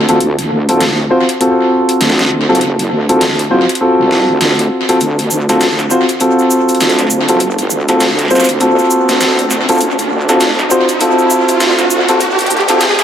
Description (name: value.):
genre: glitch hop.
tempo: 100 BPM.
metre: 4/4.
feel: swing 61% on 16ths.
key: unclear.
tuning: A4 = 440 Hz.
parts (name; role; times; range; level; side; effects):
dark baby grand piano; stabs; 0.0-12.8 s; C4 to C5; -12 LUFS; equal; low-pass filter, tape echo.
wobble bass; bass; 0.0-13.0 s; F#1 to D2; -17 LUFS; equal; chorus, tube saturation, high-pass filter.
dubstep drum kit; drums; 0.1-13.0 s; hi-hat, shaker, snare drum; -16 LUFS; equal; overdrive, high-pass filter on snare, high-pass filter on hats, high-pass filter on perc, high-pass filter on room, tape echo.
riser; sound effects; 6.9-13.0 s; none; -18 LUFS; right 1 dB; none.
room: moderate plate reverb, RT60 2.8 s.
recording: echo-heavy mix, high-pass filter.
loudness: -9 LUFS.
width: side -9 dB against mid.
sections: 0.0-13.0 A section.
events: build-up 0.0-13.0; riser 6.9-13.0.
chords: 0.0 D7#9.